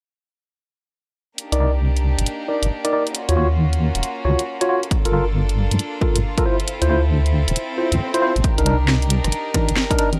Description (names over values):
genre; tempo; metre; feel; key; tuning
UK garage, two-step garage; 136 BPM; 4/4; swing 64% on 16ths; C dorian; A4 = 440 Hz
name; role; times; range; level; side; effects
clear studio violin section; sustained chords; 1.4-10.2 s; Bb3 to Bb4; -31 LUFS; equal; sidechain pumping
garage drum kit; drums; 1.4-10.2 s; congas, hi-hat, rim click, snare drum; -26 LUFS; equal; overdrive
bright tine electric piano; stabs; 1.5-10.1 s; D4 to D5; -24 LUFS; equal; low-pass filter, analog delay
deep soft wobble bass; bass; 1.5-9.8 s; D1 to G2; -20 LUFS; equal; chorus, sidechain pumping
electronic kick drum; drums; 4.9-10.0 s; none; -23 LUFS; equal; none
swell; sound effects; 7.7-8.4 s; none; -32 LUFS; equal; none
room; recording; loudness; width
little or no reverb; dry, gritty hardware recording, transformer saturation; -20 LUFS; mono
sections
1.4-8.4 A section; 8.4-10.2 B section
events
kick drops out 6.7-8.4; swell 7.7-8.4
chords
1.4 Cm9; 3.1 Ebm9; 4.9 Gm9; 6.5 Dm9; 8.4 Cm9